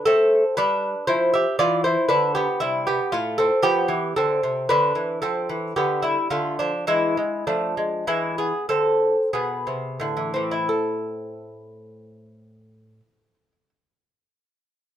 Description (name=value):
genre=classical, baroque-style dance for lute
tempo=43-60 BPM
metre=3/4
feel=rubato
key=A minor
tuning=A4 = 440 Hz
part: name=lute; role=solo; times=0.0-13.7 s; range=A2 to E5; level=-20 LUFS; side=equal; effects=none
room=moderate small room reverb, RT60 0.5 s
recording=band playing live in one room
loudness=-20 LUFS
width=side -10 dB against mid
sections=0.0-10.7 A section; 10.7-14.7 B section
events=slowing down 2.1-10.7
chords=0.0 N.C.; 0.6 G7; 2.6 C5; 3.6 F5; 5.8 Bdim/D; 6.9 E7; 10.7 Am